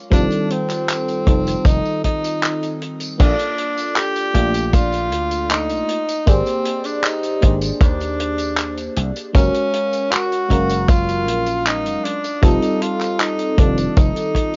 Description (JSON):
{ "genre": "vaporwave", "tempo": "78 BPM", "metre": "4/4", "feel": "straight", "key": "Bb major", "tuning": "A4 = 439 Hz", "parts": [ { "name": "clear tenor saxophone", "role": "melody", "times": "0.1-14.6 s", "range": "C4 to G4", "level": "-24 LUFS", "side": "equal", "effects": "tape echo" }, { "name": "FM electric piano with soft pad layer", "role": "accompaniment", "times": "0.1-14.6 s", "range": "Eb3 to F5", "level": "-25 LUFS", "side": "equal", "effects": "subtle chorus" }, { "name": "dry thumbed slap bass", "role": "bass", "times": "0.1-14.1 s", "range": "F1 to Eb2", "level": "-26 LUFS", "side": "equal", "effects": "none" }, { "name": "kick drum", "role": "drums", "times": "0.1-14.5 s", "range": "none", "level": "-17 LUFS", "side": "equal", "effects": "vintage 12-bit sampler grit" }, { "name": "warm soul drum kit", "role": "drums", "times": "0.1-14.6 s", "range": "crash cymbal, handclaps, hi-hat, tambourine", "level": "-27 LUFS", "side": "equal", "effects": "vintage 12-bit sampler grit" } ], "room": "small room ambience", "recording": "rough home demo mix, cassette tape, nothing above 7.5 kHz", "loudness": "-19 LUFS", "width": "mono", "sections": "0.0-3.2 A section; 3.2-14.6 B section", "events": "none", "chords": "0.0 F9; 3.2 Bbmaj7; 5.9 Abmaj9#11; 9.3 Gbmaj9; 12.0 F9", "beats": "| 0.12 0.89 1.66 2.43 | 3.20 3.97 4.74 5.50 | 6.27 7.04 7.81 8.58 | 9.35 10.12 10.89 11.66 | 12.43 13.20 13.97" }